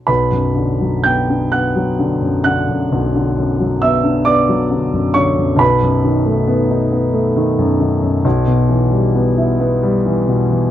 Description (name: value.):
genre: classical, romantic nocturne for solo piano.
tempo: 41-47 BPM (dotted quarters).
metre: 12/8.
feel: rubato.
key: B minor.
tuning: A4 = 440 Hz.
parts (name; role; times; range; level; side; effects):
warm concert grand piano; solo; 0.0-10.7 s; B1 to G6; -13 LUFS; equal; none.
room: light reverb.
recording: worn, warbling old tape, cassette tape, warbly pitch drift.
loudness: -13 LUFS.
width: side -12 dB against mid.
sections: 0.1-10.7 A section.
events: none.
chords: 0.1 Bm; 5.6 B7; 8.2 Em/B.